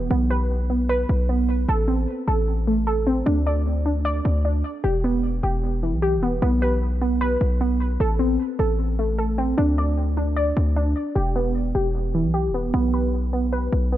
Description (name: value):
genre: hip hop, trap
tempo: 152 BPM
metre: 4/4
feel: half-time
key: E minor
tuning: A4 = 440 Hz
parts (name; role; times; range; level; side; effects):
- warbly dusty pluck; arpeggios; 0.0-14.0 s; E3 to D5; -23 LUFS; right 1 dB; chorus, low-pass filter, digital delay
- hard-hitting 808-style bass; bass; 0.0-14.0 s; E1 to D2; -22 LUFS; equal; none
room: light reverb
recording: dark, warm production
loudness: -20 LUFS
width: side -13 dB against mid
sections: 0.0-11.2 A section; 11.2-14.0 B section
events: filter sweep on synth pluck 11.2-14.0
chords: 0.1 N.C.; 1.7 Am; 3.3 N.C.; 4.8 Em; 6.4 N.C.; 8.0 Am; 9.6 N.C.; 11.2 Em; 12.7 N.C.